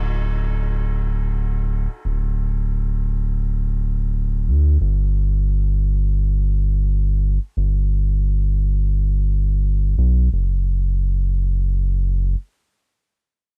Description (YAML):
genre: trip hop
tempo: free time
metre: none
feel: none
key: unclear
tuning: A4 = 439 Hz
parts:
  - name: round analog bass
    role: bass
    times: 0.0-12.4 s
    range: D1 to D2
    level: -20 LUFS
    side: equal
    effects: tube saturation
room: little or no reverb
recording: none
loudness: -20 LUFS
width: mono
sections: 0.0-10.3 A section; 10.3-13.1 B section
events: none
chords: none